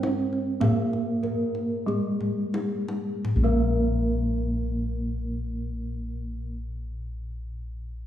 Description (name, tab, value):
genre	Javanese gamelan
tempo	42-53 BPM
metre	4/4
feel	straight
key	unclear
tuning	A4 = 440 Hz
part	gamelan-type bronze metallophone	melody	0.0-6.5 s	Ab3-40c to C4+40c	-29 LUFS	right 3 dB	none
part	gamelan-type bronze metallophone	accompaniment	0.0-6.6 s	Ab3-40c to Bb3	-34 LUFS	left 1 dB	none
part	gamelan-type bossed gongs	arpeggios	0.0-6.6 s	Ab4-40c to C5+40c	-36 LUFS	left 7 dB	none
part	gamelan-type bronze metallophone	arpeggios	0.0-6.6 s	Ab4-40c to C5+40c	-37 LUFS	right 1 dB	none
part	gamelan-type bossed gongs	bass	0.0-6.5 s	Bb1 to Ab4-40c	-30 LUFS	left 1 dB	none
part	kendang	percussion	0.0-3.9 s	none	-31 LUFS	left 2 dB	none
room	wet recital hall reverb, RT60 1.6 s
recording	recorded in a church or concert hall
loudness	-24 LUFS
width	side -11 dB against mid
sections	0.0-3.2 A section; 3.2-8.1 B section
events	slowing down 0.0-3.2; drum fill 1.9-3.2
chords	none